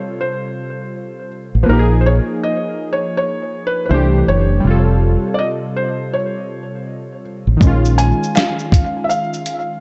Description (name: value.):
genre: lo-fi hip hop.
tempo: 81 BPM.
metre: 4/4.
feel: swing 63% on 16ths.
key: unclear.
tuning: A4 = 440 Hz.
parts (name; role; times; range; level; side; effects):
warm analog keys; accompaniment; 0.0-9.8 s; C3 to A4; -22 LUFS; equal; chorus, cassette tape, low-pass filter.
felt-muted upright piano; melody; 0.2-9.8 s; A#4 to G#5; -23 LUFS; equal; low-pass filter, analog delay.
deep dub fingered electric bass; bass; 1.5-8.1 s; F1 to C2; -16 LUFS; equal; none.
dusty soul sampler-style drum kit; drums; 7.6-9.7 s; hi-hat, kick drum, shaker, snare drum; -17 LUFS; equal; none.
finger snaps; percussion; 8.4-8.6 s; none; -38 LUFS; equal; none.
room: light reverb.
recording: echo-heavy mix, cassette tape, nothing above 8.0 kHz.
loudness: -16 LUFS.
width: mono.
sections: 0.0-9.8 A section.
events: none.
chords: 0.0 F; 1.7 A#5; 3.9 Cadd9; 4.6 F; 7.6 A#m7.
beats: 0.20 0.94 | 1.68 2.42 3.16 3.90 | 4.64 5.38 6.13 6.87 | 7.61 8.35 9.09.